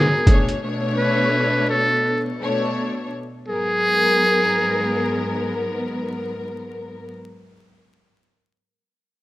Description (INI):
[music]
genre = hip hop, boom-bap hip-hop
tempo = 84 BPM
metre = 4/4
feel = swing 59% on 16ths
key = G# minor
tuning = A4 = 440 Hz
[part]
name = trumpet with metal mute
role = melody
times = 0.0-5.6 s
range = G#4 to B4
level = -20 LUFS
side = equal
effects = high-pass filter, low-pass filter
[part]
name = warm studio string section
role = accompaniment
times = 0.0-7.1 s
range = G#2 to C#5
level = -23 LUFS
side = left 1 dB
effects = high-pass filter, low-pass filter
[part]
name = trip hop sampler-style drum kit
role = drums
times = 0.3-0.6 s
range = hi-hat, kick drum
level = -16 LUFS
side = equal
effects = overdrive
[sound]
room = small room ambience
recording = rough home demo mix, vinyl crackle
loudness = -18 LUFS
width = side -17 dB against mid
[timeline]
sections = 0.0-3.5 A section; 3.5-6.3 B section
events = none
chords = 0.3 Bm9; 3.5 G#m9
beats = | 0.62 1.34 2.05 2.77 | 3.48 4.20 4.91 5.62